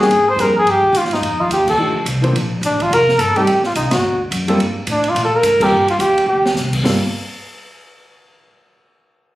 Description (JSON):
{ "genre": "jazz, small-group swing and bop", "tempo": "214 BPM", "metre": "4/4", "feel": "swing 59% on 8ths", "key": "G minor", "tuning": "A4 = 438 Hz", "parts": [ { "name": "mellow trumpet", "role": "melody", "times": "0.0-6.5 s", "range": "D4 to C5", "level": "-14 LUFS", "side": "equal", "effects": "none" }, { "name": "warm grand piano", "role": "accompaniment", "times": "0.0-7.0 s", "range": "F3 to C5", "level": "-19 LUFS", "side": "equal", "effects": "none" }, { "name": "upright bass", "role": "bass", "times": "0.0-7.0 s", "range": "F1 to Bb2", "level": "-22 LUFS", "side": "equal", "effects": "none" }, { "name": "open jazz drum kit", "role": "drums", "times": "0.0-6.9 s", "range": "crash cymbal, hi-hat, kick drum, ride cymbal, snare drum", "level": "-23 LUFS", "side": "right 1 dB", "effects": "none" } ], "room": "moderate studio reverb, RT60 0.7 s", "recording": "recorded on a phone in the room, studio reverb, compression", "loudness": "-13 LUFS", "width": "side -16 dB against mid", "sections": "0.0-6.8 A section; 6.8-8.0 B section", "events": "band accent 1.6, 3.9, 5.6; drum fill 6.3", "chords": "0.1 Abmaj9#11; 1.2 F13; 2.4 Bb5; 3.5 F9 (rootless); 4.0 D7; 4.6 Gmadd9; 6.8 Gm11", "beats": "| 0.10 0.38 0.67 0.95 | 1.23 1.51 1.79 2.07 | 2.35 2.63 2.91 3.19 | 3.47 3.75 4.04 4.32 | 4.60 4.88 5.16 5.44 | 5.72 6.00 6.28 6.56 | 6.84" }